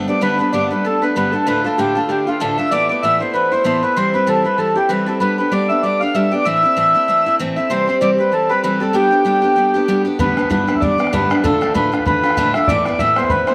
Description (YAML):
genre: celtic folk, Celtic reel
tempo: 193 BPM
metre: 4/4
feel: swing 56% on 8ths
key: G mixolydian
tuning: A4 = 440 Hz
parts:
  - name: Celtic harp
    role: second line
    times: 0.0-13.5 s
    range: F4 to F5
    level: -25 LUFS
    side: equal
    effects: none
  - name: picked steel-string acoustic guitar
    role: accompaniment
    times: 0.0-13.5 s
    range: D2 to G4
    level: -22 LUFS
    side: equal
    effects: none
  - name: mellow accordion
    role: melody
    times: 0.1-13.5 s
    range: F4 to F5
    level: -19 LUFS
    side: equal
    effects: none
  - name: bodhran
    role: percussion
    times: 10.2-13.5 s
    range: none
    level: -24 LUFS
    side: equal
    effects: none
room: moderate spring reverb, RT60 1.4 s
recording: none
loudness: -16 LUFS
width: mono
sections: 0.2-10.2 A section; 10.2-13.5 A section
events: none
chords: 0.2 Gadd9; 1.5 Dm; 2.7 Asus2; 4.0 C; 5.2 G; 6.5 Am; 7.7 C; 8.9 G; 10.2 Gadd9; 11.4 Dm; 12.7 Asus2